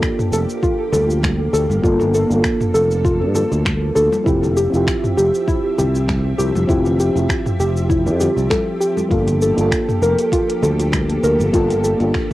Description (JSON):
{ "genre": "sunset chillout", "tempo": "99 BPM", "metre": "4/4", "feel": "swing 54% on 16ths", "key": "G dorian", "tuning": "A4 = 443 Hz", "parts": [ { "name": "mellow FM electric piano", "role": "accompaniment", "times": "0.0-12.3 s", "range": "Bb3 to A4", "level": "-21 LUFS", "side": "equal", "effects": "chorus, auto-pan, low-pass filter, cassette tape, tape echo" }, { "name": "soft string machine", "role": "sustained chords", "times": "0.0-12.3 s", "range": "F3 to E5", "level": "-26 LUFS", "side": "equal", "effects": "ensemble chorus, cassette tape" }, { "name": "deep house drum kit", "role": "drums", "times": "0.0-12.3 s", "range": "cabasa, finger snaps, hi-hat, toms", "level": "-25 LUFS", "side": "equal", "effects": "studio ambience" }, { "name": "electronic kick drum", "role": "drums", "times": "0.0-12.3 s", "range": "none", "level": "-22 LUFS", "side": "equal", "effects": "studio ambience" }, { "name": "soft round pluck", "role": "arpeggios", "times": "0.3-12.0 s", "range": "E4 to Bb4", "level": "-20 LUFS", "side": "left 1 dB", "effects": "chorus, cassette tape, tape echo" }, { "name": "sustaining fretless electric bass", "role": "bass", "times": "0.3-12.1 s", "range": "F1 to G2", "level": "-19 LUFS", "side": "equal", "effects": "none" }, { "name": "congas", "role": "percussion", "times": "0.9-11.8 s", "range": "none", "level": "-26 LUFS", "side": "equal", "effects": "none" } ], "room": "moderate booth ambience, RT60 0.2 s", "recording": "home recording on cassette, lossy compression artefacts", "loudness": "-15 LUFS", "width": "side -16 dB against mid", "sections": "0.0-12.3 A section", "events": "filter sweep on FM electric piano 0.0-12.3", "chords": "0.0 Gm9; 4.3 Fmaj7sus2; 9.1 Gm9" }